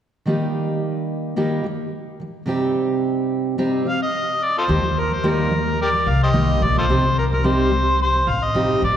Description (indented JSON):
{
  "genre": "pop",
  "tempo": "109 BPM",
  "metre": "4/4",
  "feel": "straight",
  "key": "unclear",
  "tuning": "A4 = 441 Hz",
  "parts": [
    { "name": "fingerpicked steel-string acoustic guitar", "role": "accompaniment", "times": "0.3-9.0 s", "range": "C3 to G4", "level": "-21 LUFS", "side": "right 1 dB", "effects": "none" },
    { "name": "overdriven harmonica", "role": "melody", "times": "3.9-9.0 s", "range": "F4 to F5", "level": "-20 LUFS", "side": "left 1 dB", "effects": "none" },
    { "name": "upright bass", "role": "bass", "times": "4.7-9.0 s", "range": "A1 to Eb2", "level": "-21 LUFS", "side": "left 1 dB", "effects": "none" }
  ],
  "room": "wet concert hall reverb, RT60 2.2 s",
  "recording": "recorded in a church or concert hall",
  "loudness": "-18 LUFS",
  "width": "side -10 dB against mid",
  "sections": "0.3-4.7 A section; 4.7-9.0 B section",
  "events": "none",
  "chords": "0.3 Eb; 2.5 Cm; 4.7 Eb; 6.9 Cm"
}